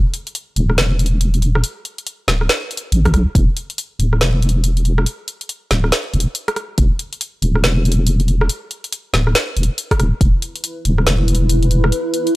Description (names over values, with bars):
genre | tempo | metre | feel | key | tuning
deep dubstep | 140 BPM | 4/4 | swing 62% on 16ths, half-time | unclear | A4 = 442 Hz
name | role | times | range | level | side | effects
deep soft wobble bass | bass | 0.0-11.9 s | D1 to B1 | -14 LUFS | equal | chorus
deep house drum kit | drums | 0.1-12.3 s | hi-hat, rim click, snare drum | -20 LUFS | equal | studio reverb
electronic kick drum | drums | 3.1-3.5, 6.8-6.9, 9.9-10.3 s | none | -16 LUFS | equal | studio reverb
granular cloud pad | sustained chords | 10.7-12.4 s | E4 to B4 | -21 LUFS | equal | built-in reverb
room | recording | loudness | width
little or no reverb | dry, gritty hardware recording, transformer saturation | -15 LUFS | side -18 dB against mid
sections
0.0-12.4 A section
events
none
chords
0.0 E5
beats
0.35 0.78 1.21 | 1.64 2.06 2.49 2.92 | 3.35 3.78 4.21 4.64 | 5.06 5.49 5.92 6.35 | 6.78 7.21 7.64 8.06 | 8.49 8.92 9.35 9.78 | 10.21 10.64 11.06 11.49 | 11.92 12.35